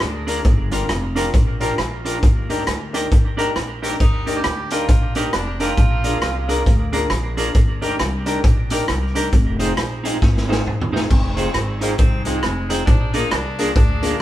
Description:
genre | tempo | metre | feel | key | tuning
ska | 135 BPM | 4/4 | swing 60% on 8ths | F dorian | A4 = 440 Hz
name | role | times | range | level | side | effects
bright tenor saxophone | melody | 0.0-0.2, 4.0-6.9, 11.8-14.2 s | Ab3 to G4 | -27 LUFS | right 1 dB | none
warm upright piano | stabs | 0.0-14.2 s | Bb3 to Bb4 | -26 LUFS | left 3 dB | none
upright bass | bass | 0.0-14.1 s | F1 to Eb2 | -25 LUFS | equal | none
raw garage drum kit | drums | 0.0-14.1 s | crash cymbal, hi-hat, kick drum, rim click, snare drum, toms | -18 LUFS | equal | none
clean electric guitar | accompaniment | 0.3-14.2 s | D4 to C5 | -26 LUFS | right 3 dB | tremolo, dub echo
room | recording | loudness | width
moderate stone room reverb, RT60 1.0 s | band playing live in one room | -16 LUFS | side -14 dB against mid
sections
0.0-11.1 A section; 11.1-14.2 A section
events
drum fill 10.2-11.1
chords
0.5 Gm7; 2.2 Ebmaj7; 5.8 Bb7; 7.6 Ebmaj7; 9.3 Fm7; 12.9 Bb7

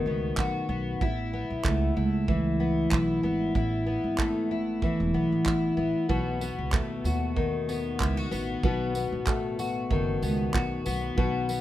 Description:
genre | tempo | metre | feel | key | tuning
acoustic pop | 94 BPM | 4/4 | swing 55% on 16ths | unclear | A4 = 440 Hz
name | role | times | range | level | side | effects
fingerpicked twelve-string acoustic guitar | accompaniment | 0.0-11.6 s | B2 to F#4 | -27 LUFS | left 2 dB | none
upright bass | bass | 0.1-11.6 s | E1 to D#2 | -31 LUFS | right 1 dB | none
loose indie drum kit | drums | 0.4-11.6 s | handclaps, kick drum, tambourine | -29 LUFS | right 2 dB | none
room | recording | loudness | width
little or no reverb | minimal, uncompressed stereo recording | -25 LUFS | side -14 dB against mid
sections
0.0-11.6 A section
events
none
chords
0.0 B7; 1.0 Asus2; 6.1 B7

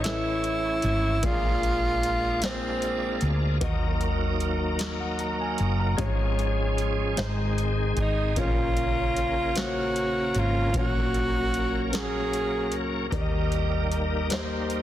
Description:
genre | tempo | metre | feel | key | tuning
slow gospel | 50 BPM (dotted quarters) | 6/8 | straight | unclear | A4 = 437 Hz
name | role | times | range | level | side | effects
breathy tenor saxophone | melody | 0.0-3.3, 8.0-12.7 s | C4 to Bb4 | -27 LUFS | right 1 dB | none
warm concert grand piano | accompaniment | 0.0-14.8 s | Ab2 to Bb5 | -31 LUFS | left 3 dB | none
bright tonewheel organ | sustained chords | 0.0-14.8 s | Db3 to C#5 | -31 LUFS | right 2 dB | slow rotary speaker, chorus vibrato
hollow-body short-scale fingered electric bass | bass | 0.0-14.8 s | Gb1 to Eb2 | -29 LUFS | equal | none
booming analog drum machine | drums | 0.0-14.8 s | hi-hat, kick drum, snare drum | -31 LUFS | equal | none
room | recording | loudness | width
light reverb, digital ambience | dense, heavily limited modern master | -24 LUFS | side -12 dB against mid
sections
0.0-14.8 A section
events
none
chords
0.0 A; 1.2 Bb7; 3.6 Ebm; 6.0 Db/Ab; 7.2 Ab; 8.4 Bbm; 10.7 Gb/Bb; 13.1 Eb

